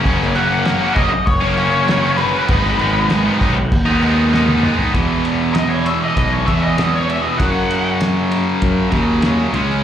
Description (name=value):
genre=classic rock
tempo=98 BPM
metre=4/4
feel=straight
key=unclear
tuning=A4 = 440 Hz
part: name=tight distorted guitar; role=riff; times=0.0-9.8 s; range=E2 to D#4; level=-18 LUFS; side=equal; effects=distortion, slapback echo
part: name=fuzz picked electric bass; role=bass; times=0.0-9.8 s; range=F#1 to F#2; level=-18 LUFS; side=equal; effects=overdrive
part: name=cloth-damped thuddy drum kit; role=drums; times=0.1-9.8 s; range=crash cymbal, kick drum, ride cymbal, snare drum, toms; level=-22 LUFS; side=equal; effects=none
part: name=octave-fuzz lead guitar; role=melody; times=0.4-8.0 s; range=B4 to F#5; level=-20 LUFS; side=left 1 dB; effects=wah, distortion, slapback echo
room=light reverb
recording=live gig heard through the venue's PA, club reverb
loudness=-14 LUFS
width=side -10 dB against mid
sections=0.0-4.9 A section; 4.9-9.8 B section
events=drum fill 4.3-4.9; lead electric guitar solo 4.9-9.8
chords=0.0 F#; 2.5 G#m; 4.9 E5; 7.4 F#5